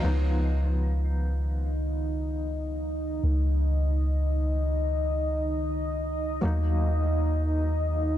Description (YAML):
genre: trip hop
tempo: free time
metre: none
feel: none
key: unclear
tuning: A4 = 440 Hz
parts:
  - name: felt-muted upright piano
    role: accompaniment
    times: 0.0-8.2 s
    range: F3 to Eb4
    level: -34 LUFS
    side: left 1 dB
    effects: tremolo, tape echo
  - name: deep dark ambient pad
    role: sustained chords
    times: 0.0-8.2 s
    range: Eb4 to Eb5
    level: -31 LUFS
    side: equal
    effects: chorus, built-in reverb
  - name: soft 808-style bass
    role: bass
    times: 0.0-8.2 s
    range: Db2 to Eb2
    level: -26 LUFS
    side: equal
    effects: none
room: digital ambience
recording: dense, heavily limited modern master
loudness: -25 LUFS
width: side -12 dB against mid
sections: 0.0-8.2 A section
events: none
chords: 0.0 Db7; 6.4 Ebm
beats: free time